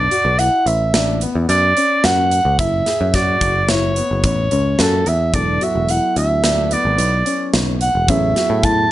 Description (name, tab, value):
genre	progressive instrumental, band music in an uneven meter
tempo	109 BPM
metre	5/4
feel	straight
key	E mixolydian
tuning	A4 = 440 Hz
part	dark soprano saxophone	melody	0.0-8.9 s	A4 to A5	-17 LUFS	right 1 dB	none
part	dark concert grand piano	arpeggios	0.0-8.9 s	B3 to G#4	-24 LUFS	left 4 dB	tape echo
part	picked electric bass	bass	0.0-8.8 s	E1 to A2	-19 LUFS	equal	none
part	tight metal drum kit	drums	0.1-8.8 s	hi-hat, kick drum, snare drum	-21 LUFS	equal	none
part	tine electric piano	accompaniment	5.3-8.9 s	F#3 to A4	-26 LUFS	right 3 dB	medium stereo tremolo
room	light reverb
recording	nothing above 11.0 kHz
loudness	-14 LUFS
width	side -14 dB against mid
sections	0.0-8.9 A section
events	none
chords	0.0 Bm7; 2.6 F#7(no3); 5.3 E7sus4; 8.1 Amaj7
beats	0.39 0.94 1.49 2.04 | 2.59 3.14 3.69 4.24 4.79 | 5.34 5.89 6.44 6.99 7.54 | 8.09 8.63